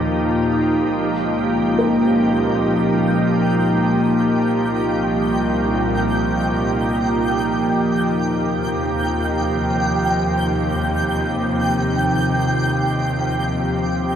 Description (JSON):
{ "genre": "ambient", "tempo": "70 BPM", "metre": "4/4", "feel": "straight", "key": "Eb mixolydian", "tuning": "A4 = 440 Hz", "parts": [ { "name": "soft additive organ-like pad", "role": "sustained chords", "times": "0.0-14.2 s", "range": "Bb2 to G4", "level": "-18 LUFS", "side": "equal", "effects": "ensemble chorus, built-in reverb" }, { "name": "rich studio cello section", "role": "bass", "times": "0.0-14.2 s", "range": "C2 to Eb2", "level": "-27 LUFS", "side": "equal", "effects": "none" }, { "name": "twinkling granular texture", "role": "texture", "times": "1.7-14.2 s", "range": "G5", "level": "-26 LUFS", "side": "right 1 dB", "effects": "built-in reverb, ensemble chorus" }, { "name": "felt-muted upright piano", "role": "arpeggios", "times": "1.8-14.2 s", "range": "Eb4 to Bb4", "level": "-31 LUFS", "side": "equal", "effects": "none" } ], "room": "wet cathedral reverb, RT60 5.6 s", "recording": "dreamy mix soaked in reverb, cassette tape", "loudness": "-17 LUFS", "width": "side -9 dB against mid", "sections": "0.0-14.2 A section", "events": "none", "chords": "0.0 Ebadd9; 0.9 Db; 4.4 Eb69/C; 7.8 Ebadd9" }